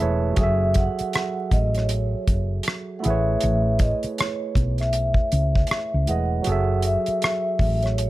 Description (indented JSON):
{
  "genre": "R&B, neo-soul",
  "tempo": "79 BPM",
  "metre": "4/4",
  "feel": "swing 60% on 16ths",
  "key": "F# minor",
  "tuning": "A4 = 441 Hz",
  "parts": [
    { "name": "barky tine electric piano", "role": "accompaniment", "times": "0.0-8.1 s", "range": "F#3 to A5", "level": "-28 LUFS", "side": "right 4 dB", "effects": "none" },
    { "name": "woody fretless electric bass", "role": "bass", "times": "0.0-8.1 s", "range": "E1 to C#2", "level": "-22 LUFS", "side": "equal", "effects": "none" },
    { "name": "vibraphone with soft mallets", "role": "melody", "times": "0.4-8.1 s", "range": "C#5 to F#5", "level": "-26 LUFS", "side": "equal", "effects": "none" },
    { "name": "damped 70s drum kit", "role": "drums", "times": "0.4-8.1 s", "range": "hi-hat, kick drum, rim click", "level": "-23 LUFS", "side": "equal", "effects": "none" }
  ],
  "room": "little or no reverb",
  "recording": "vinyl crackle",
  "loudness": "-20 LUFS",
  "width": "side -16 dB against mid",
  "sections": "0.0-8.1 A section",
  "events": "tine electric piano fill 0.0-0.4; kick muted 6.4-7.2",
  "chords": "0.4 F#m9; 3.0 Amaj9; 6.4 F#m9",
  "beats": "| 0.37 1.13 1.89 2.65 | 3.41 4.17 4.93 5.69 | 6.45 7.21 7.96"
}